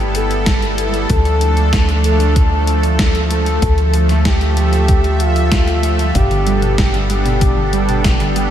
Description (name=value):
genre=synthwave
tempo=95 BPM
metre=4/4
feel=straight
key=D dorian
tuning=A4 = 440 Hz
part: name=expressive portamento lead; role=melody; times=0.0-8.5 s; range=F4 to A4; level=-21 LUFS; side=left 1 dB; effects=lush chorus, diffuse ambient delay
part: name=soft supersaw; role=sustained chords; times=0.0-8.5 s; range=F3 to E5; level=-20 LUFS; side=right 2 dB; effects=sidechain pumping
part: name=tight sequencer bass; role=bass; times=0.0-8.5 s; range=G1 to D2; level=-16 LUFS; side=equal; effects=none
part: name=gated 80s digital drum machine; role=drums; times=0.1-8.5 s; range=hi-hat, snare drum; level=-22 LUFS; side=equal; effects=gated reverb, gated reverb snare, overdrive
part: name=electronic kick drum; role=drums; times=0.5-8.2 s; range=none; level=-16 LUFS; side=equal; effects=overdrive
part: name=thumb-piano-like synth pluck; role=arpeggios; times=6.1-8.5 s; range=B2 to G3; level=-22 LUFS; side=right 3 dB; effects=chorus, diffuse ambient delay
room=moderate huge ambient reverb, RT60 7.2 s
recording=dreamy mix soaked in reverb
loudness=-12 LUFS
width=side -10 dB against mid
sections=0.0-8.5 A section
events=none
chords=0.0 Gadd9; 1.1 Dm; 6.2 Gadd9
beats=0.47 | 1.10 1.73 2.36 2.99 | 3.62 4.25 4.89 5.52 | 6.15 6.78 7.41 8.04